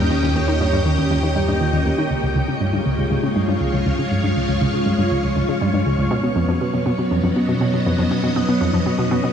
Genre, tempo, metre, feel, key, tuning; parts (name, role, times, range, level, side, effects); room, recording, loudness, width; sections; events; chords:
ambient, sequencer-driven space music; 120 BPM; 4/4; straight; Db lydian; A4 = 439 Hz
string machine, full ensemble; sustained chords; 0.0-9.3 s; Gb3 to G5; -21 LUFS; equal; ensemble chorus
vibraphone with soft mallets; arpeggios; 0.0-9.3 s; Db4 to Db5; -28 LUFS; right 2 dB; auto-pan, tape echo
analog pluck; riff; 0.0-9.3 s; Db2 to Eb3; -20 LUFS; equal; chorus, tape echo
warm sub bass; bass; 0.0-2.1 s; Eb2; -23 LUFS; equal
twinkling granular texture; texture; 0.0-2.1 s; Db5; -40 LUFS; right 1 dB
moderate shimmer reverb, RT60 7.7 s; -17 LUFS; side -8 dB against mid
0.0-2.1 A section; 2.1-9.3 B section
filter sweep on synth arpeggio sound 0.0-2.1; fade-in on vibraphone 2.1-9.3
0.0 Eb; 2.1 Db; 6.1 Cb